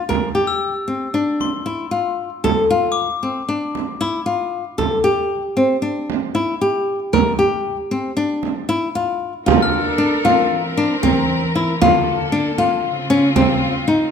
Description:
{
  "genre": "contemporary instrumental, chamber music in an uneven meter",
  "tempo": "231 BPM (eighths)",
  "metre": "9/8",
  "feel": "straight",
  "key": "Bb lydian",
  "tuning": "A4 = 443 Hz",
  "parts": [
    { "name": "flamenco guitar", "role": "arpeggios", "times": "0.1-14.1 s", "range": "C4 to Bb4", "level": "-18 LUFS", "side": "left 3 dB", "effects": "none" },
    { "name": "frame drum", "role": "percussion", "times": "0.1-13.6 s", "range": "none", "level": "-21 LUFS", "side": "right 9 dB", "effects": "none" },
    { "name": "glockenspiel with brass mallets", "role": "texture", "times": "0.5-3.8, 9.6-10.5 s", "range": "C6 to F6", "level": "-28 LUFS", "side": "left 6 dB", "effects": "none" },
    { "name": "rich studio string section", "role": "sustained chords", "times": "9.5-14.1 s", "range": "Db3 to Bb4", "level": "-22 LUFS", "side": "equal", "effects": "none" }
  ],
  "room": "moderate recital hall reverb, RT60 1.6 s",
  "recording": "close, detailed microphones",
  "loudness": "-16 LUFS",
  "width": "side -7 dB against mid",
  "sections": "0.1-9.5 A section; 9.5-14.1 B section",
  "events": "none",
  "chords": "0.1 Csus4; 2.4 Dm; 4.8 N.C.; 7.1 Bb69; 9.5 Bbmaj7; 10.5 C7; 11.8 Bbmaj7/D; 12.8 Dbmaj7",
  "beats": "| 0.10 0.36 0.62 0.88 1.14 1.40 1.66 1.93 2.19 | 2.45 2.71 2.97 3.23 3.49 3.75 4.01 4.27 4.53 | 4.79 5.05 5.31 5.57 5.83 6.09 6.36 6.62 6.88 | 7.13 7.39 7.65 7.91 8.17 8.43 8.69 8.95 9.21 | 9.47 9.73 9.99 10.25 10.51 10.77 11.03 11.29 11.55 | 11.80 12.06 12.32 12.58 12.84 13.10 13.36 13.62 13.88"
}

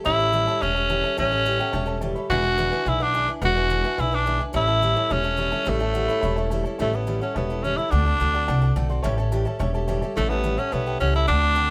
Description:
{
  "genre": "rockabilly",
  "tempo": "214 BPM",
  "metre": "4/4",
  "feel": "straight",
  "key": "A mixolydian",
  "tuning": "A4 = 440 Hz",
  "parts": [
    { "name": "dark upright piano", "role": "accompaniment", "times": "0.0-11.6 s", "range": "B4 to C6", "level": "-34 LUFS", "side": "equal", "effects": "none" },
    { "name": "picked steel-string acoustic guitar", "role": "accompaniment", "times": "0.0-11.7 s", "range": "A2 to B4", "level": "-33 LUFS", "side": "equal", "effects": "none" },
    { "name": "raspy tenor saxophone", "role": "melody", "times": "0.1-11.7 s", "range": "A3 to F#4", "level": "-25 LUFS", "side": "equal", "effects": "none" },
    { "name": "upright bass", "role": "bass", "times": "0.1-11.7 s", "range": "E1 to D2", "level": "-27 LUFS", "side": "equal", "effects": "none" }
  ],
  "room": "light reverb",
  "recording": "band playing live in one room",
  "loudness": "-23 LUFS",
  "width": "mono",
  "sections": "0.0-6.8 A section; 6.8-11.7 B section",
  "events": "upright piano fill 1.5-2.3; tenor saxophone solo 6.8-11.7",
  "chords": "0.0 A7; 2.3 E7; 4.5 A7; 7.9 D7; 9.0 A7",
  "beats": "| 0.05 0.33 0.61 0.89 | 1.18 1.46 1.74 2.02 | 2.30 2.58 2.86 3.14 | 3.42 3.71 3.99 4.27 | 4.55 4.83 5.11 5.39 | 5.67 5.95 6.23 6.51 | 6.80 7.08 7.36 7.64 | 7.92 8.20 8.48 8.76 | 9.04 9.32 9.60 9.88 | 10.16 10.44 10.72 11.01 | 11.29 11.57"
}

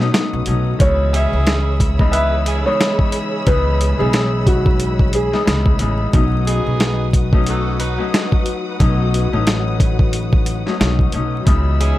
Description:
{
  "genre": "hip hop, boom-bap hip-hop",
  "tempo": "90 BPM",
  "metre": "4/4",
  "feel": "swing 58% on 16ths",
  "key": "C# minor",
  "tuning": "A4 = 438 Hz",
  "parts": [
    { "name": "Celtic harp", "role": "accompaniment", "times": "0.0-12.0 s", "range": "C#2 to E4", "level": "-22 LUFS", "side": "left 3 dB", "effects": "high-pass filter, low-pass filter, plate reverb" },
    { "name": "warm studio string section", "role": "sustained chords", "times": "0.0-12.0 s", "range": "F#4 to E6", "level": "-28 LUFS", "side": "equal", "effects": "high-pass filter, low-pass filter, plate reverb" },
    { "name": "upright bass", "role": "bass", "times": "0.0-11.9 s", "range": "A1 to C#2", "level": "-19 LUFS", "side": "equal", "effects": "none" },
    { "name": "dusty soul sampler-style drum kit", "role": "drums", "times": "0.0-12.0 s", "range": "hi-hat, kick drum, snare drum", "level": "-16 LUFS", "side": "equal", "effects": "none" },
    { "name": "dark upright piano", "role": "melody", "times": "0.8-6.1 s", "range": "F#4 to E5", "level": "-21 LUFS", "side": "right 1 dB", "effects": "high-pass filter, low-pass filter, plate reverb, tape echo" },
    { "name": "bright saxophone section", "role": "stabs", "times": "1.1-12.0 s", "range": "B3 to B4", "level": "-26 LUFS", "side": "right 3 dB", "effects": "high-pass filter, low-pass filter, plate reverb, tape echo" }
  ],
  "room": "light reverb",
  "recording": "vinyl crackle",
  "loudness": "-14 LUFS",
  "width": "side -15 dB against mid",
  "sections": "0.8-12.0 A section",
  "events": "break 0.0-0.8",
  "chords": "0.0 B7; 0.8 C#m7; 6.1 B7; 11.5 C#m7",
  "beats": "0.14 | 0.80 1.47 2.13 2.80 | 3.47 4.13 4.80 5.47 | 6.13 6.80 7.47 8.13 | 8.80 9.47 10.13 10.80 | 11.47"
}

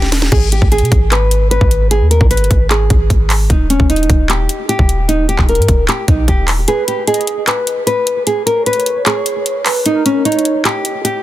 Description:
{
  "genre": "hip hop, trap",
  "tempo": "151 BPM",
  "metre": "4/4",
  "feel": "half-time",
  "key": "unclear",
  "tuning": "A4 = 440 Hz",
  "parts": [
    { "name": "nylon-string guitar", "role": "melody", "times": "0.0-11.2 s", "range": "C#4 to B4", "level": "-16 LUFS", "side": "equal", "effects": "low-pass filter, digital delay" },
    { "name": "clean 808-style bass", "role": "bass", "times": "0.0-6.7 s", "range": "D#1 to B2", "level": "-14 LUFS", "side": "equal", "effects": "none" },
    { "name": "trap drum kit", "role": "drums", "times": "0.0-11.1 s", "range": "crash cymbal, handclaps, hi-hat, kick drum, snare drum", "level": "-15 LUFS", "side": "equal", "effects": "none" },
    { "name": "warm velvety synth lead", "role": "second line", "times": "6.7-10.6 s", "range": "A#4 to D#5", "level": "-22 LUFS", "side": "right 2 dB", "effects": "chorus, digital delay" }
  ],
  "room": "little or no reverb",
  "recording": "dense, heavily limited modern master",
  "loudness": "-11 LUFS",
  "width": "side -14 dB against mid",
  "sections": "0.0-11.2 A section",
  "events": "drum fill 0.0-0.3; break 6.7-11.2; kick muted 6.7-7.1",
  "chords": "0.3 G#m; 3.5 D#; 6.7 N.C.",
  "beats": "| 0.32 0.72 1.11 1.51 | 1.91 2.31 2.70 3.10 | 3.50 3.90 4.29 4.69 | 5.09 5.49 5.88 6.28 | 6.68 7.08 7.47 7.87 | 8.27 8.66 9.06 9.46 | 9.86 10.25 10.65 11.05"
}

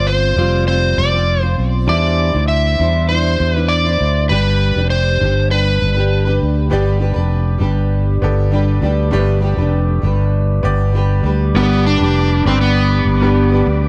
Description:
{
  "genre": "acoustic pop",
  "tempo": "99 BPM",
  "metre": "4/4",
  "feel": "straight",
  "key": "unclear",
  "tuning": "A4 = 440 Hz",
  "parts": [
    { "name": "overdriven slide guitar", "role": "melody", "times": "0.0-6.4, 11.6-13.7 s", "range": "B3 to E5", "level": "-20 LUFS", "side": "equal", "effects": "plate reverb, digital delay" },
    { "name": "fingerpicked plugged-in steel-string acoustic guitar", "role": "accompaniment", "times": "0.0-13.9 s", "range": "E3 to C5", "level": "-24 LUFS", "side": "equal", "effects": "double-tracked, plate reverb" },
    { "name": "fretless electric bass", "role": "bass", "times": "0.0-13.9 s", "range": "F1 to E2", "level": "-17 LUFS", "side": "equal", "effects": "none" },
    { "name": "bright upright piano", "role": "accompaniment", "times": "6.7-13.9 s", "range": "G3 to D5", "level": "-27 LUFS", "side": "equal", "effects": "plate reverb" },
    { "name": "mellow tonewheel organ", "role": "sustained chords", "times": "11.6-13.9 s", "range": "G4 to D6", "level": "-29 LUFS", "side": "equal", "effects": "fast rotary speaker, plate reverb" }
  ],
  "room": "light reverb",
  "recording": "none",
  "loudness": "-15 LUFS",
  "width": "mono",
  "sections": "0.0-6.7 A section; 6.7-11.5 B section; 11.5-13.9 C section",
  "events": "none",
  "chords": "0.0 Fsus2; 1.9 Cadd9; 4.3 G",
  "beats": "0.07 0.67 1.28 | 1.88 2.49 3.09 3.70 | 4.30 4.90 5.51 6.11 | 6.72 7.32 7.92 8.53 | 9.13 9.73 10.34 10.94 | 11.54 12.15 12.75 13.35"
}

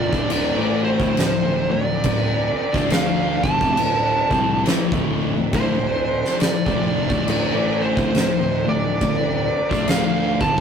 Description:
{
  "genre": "stoner and doom metal",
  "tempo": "69 BPM",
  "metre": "4/4",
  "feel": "swing 60% on 8ths",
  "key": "D minor",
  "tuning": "A4 = 440 Hz",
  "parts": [
    { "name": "fuzz lead guitar", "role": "melody", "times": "0.0-10.6 s", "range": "C5 to A5", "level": "-23 LUFS", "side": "right 2 dB", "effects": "distortion" },
    { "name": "organ-like drone", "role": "sustained chords", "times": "0.9-10.6 s", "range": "D3 to D4", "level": "-36 LUFS", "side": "equal", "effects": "none" },
    { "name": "biting overdriven guitar", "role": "riff", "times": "0.0-10.6 s", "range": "D2 to D4", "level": "-27 LUFS", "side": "equal", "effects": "none" },
    { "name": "thick fuzz guitar", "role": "riff", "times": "0.0-10.6 s", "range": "D2 to D4", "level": "-28 LUFS", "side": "left 10 dB", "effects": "distortion" },
    { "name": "thick fuzz guitar", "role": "riff", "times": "0.0-10.6 s", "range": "D2 to D4", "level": "-29 LUFS", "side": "right 8 dB", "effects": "distortion" },
    { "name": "fuzz picked electric bass", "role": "bass", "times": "0.0-10.6 s", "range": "D1 to D2", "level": "-28 LUFS", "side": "right 1 dB", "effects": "overdrive" },
    { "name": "oversized low-tuned drum kit", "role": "drums", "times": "0.1-10.6 s", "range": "crash cymbal, kick drum, snare drum", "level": "-21 LUFS", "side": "left 1 dB", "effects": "none" }
  ],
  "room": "light reverb",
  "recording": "rough rehearsal-room recording, tube saturation",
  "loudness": "-17 LUFS",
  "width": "side -7 dB against mid",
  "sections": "0.0-10.6 A section",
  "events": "none",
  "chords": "0.0 Dm",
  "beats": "0.30 1.18 | 2.05 2.92 3.79 4.66 | 5.54 6.41 7.28 8.15 | 9.02 9.89"
}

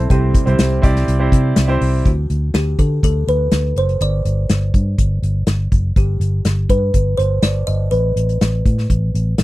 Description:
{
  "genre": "piano-driven pop",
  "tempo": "123 BPM",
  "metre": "4/4",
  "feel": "straight",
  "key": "G major",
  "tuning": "A4 = 440 Hz",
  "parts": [
    { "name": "kalimba", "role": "melody", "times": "0.0-9.3 s", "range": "F#4 to Eb5", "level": "-23 LUFS", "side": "equal", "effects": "none" },
    { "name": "warm concert grand piano", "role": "accompaniment", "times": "0.0-2.1 s", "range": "C3 to D5", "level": "-19 LUFS", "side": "right 2 dB", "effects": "none" },
    { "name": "warm analog pad", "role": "sustained chords", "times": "0.0-2.0 s", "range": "G3 to E4", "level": "-30 LUFS", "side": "left 2 dB", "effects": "none" },
    { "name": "vintage muted fingered electric bass", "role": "bass", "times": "0.0-9.4 s", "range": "F#1 to D3", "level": "-16 LUFS", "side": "equal", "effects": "none" },
    { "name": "unplugged drum kit", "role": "drums", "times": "0.1-9.4 s", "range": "hi-hat, kick drum, snare drum", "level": "-16 LUFS", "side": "equal", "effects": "none" }
  ],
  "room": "little or no reverb",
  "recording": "dry, close 1970s-style studio recording",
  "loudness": "-14 LUFS",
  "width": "side -17 dB against mid",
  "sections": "0.0-2.1 A section; 2.1-9.4 B section",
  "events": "none",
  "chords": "0.1 C; 2.1 D; 4.0 G5; 6.0 G; 7.9 Asus2",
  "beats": "| 0.10 0.59 1.08 1.56 | 2.05 2.54 3.03 3.52 | 4.01 4.50 4.99 5.48 | 5.96 6.45 6.94 7.43 | 7.92 8.41 8.90 9.39"
}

